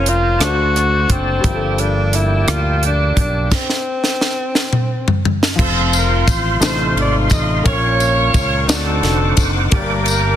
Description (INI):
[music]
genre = slow gospel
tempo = 58 BPM (dotted quarters)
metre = 6/8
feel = straight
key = F major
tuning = A4 = 436 Hz
[part]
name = breathy tenor saxophone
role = melody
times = 0.0-5.2 s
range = C4 to F#4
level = -20 LUFS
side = left 1 dB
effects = none
[part]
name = warm baby grand piano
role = accompaniment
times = 0.0-10.4 s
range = G2 to D5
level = -22 LUFS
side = left 3 dB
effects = none
[part]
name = bright tonewheel organ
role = sustained chords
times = 0.0-10.4 s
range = Bb3 to D6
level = -23 LUFS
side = right 2 dB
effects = fast rotary speaker, overdrive, chorus vibrato
[part]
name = fingered electric bass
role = bass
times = 0.0-10.4 s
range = F1 to D2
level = -18 LUFS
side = equal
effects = none
[part]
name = tight funk drum kit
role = drums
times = 0.1-10.2 s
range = crash cymbal, hi-hat, kick drum, ride cymbal, rim click, snare drum, toms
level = -18 LUFS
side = equal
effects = soft clipping on snare
[part]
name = mellow horn section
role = melody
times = 5.6-10.4 s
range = C4 to Eb5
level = -20 LUFS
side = right 1 dB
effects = none
[part]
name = tambourine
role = percussion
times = 5.9-10.4 s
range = none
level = -25 LUFS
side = left 4 dB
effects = none
[sound]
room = light reverb, small room reverb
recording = dense, heavily limited modern master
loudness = -14 LUFS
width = side -10 dB against mid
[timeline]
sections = 0.0-5.6 A section; 5.6-10.4 B section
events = drum fill 3.5-5.6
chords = 0.4 D7; 1.4 Gm9; 3.5 N.C.; 5.6 F; 6.6 F7; 7.7 Bbm; 8.7 D7b9; 9.7 Gm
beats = 0.41 | 1.44 2.48 | 3.51 4.55 | 5.58 6.62 | 7.65 8.68 | 9.72